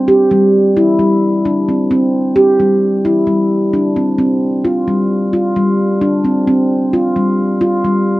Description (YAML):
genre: contemporary instrumental, contemporary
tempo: 131 BPM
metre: 5/4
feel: straight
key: unclear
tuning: A4 = 439 Hz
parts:
  - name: handpan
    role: solo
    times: 0.1-8.2 s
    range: G3 to G4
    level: -11 LUFS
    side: equal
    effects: none
room: moderate booth ambience, RT60 0.2 s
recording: none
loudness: -11 LUFS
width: side -18 dB against mid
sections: 0.0-8.2 A section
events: none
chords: none